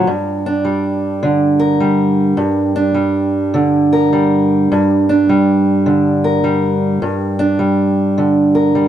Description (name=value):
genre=blues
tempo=104 BPM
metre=4/4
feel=swing 64% on 8ths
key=G minor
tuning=A4 = 440 Hz
part: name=fingerpicked steel-string acoustic guitar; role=solo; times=0.0-8.9 s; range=G2 to Bb4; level=-12 LUFS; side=right 1 dB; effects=none
room=light reverb, studio reverb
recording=dry, close 1970s-style studio recording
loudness=-12 LUFS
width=side -10 dB against mid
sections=0.1-8.9 A section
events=none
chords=0.1 Gm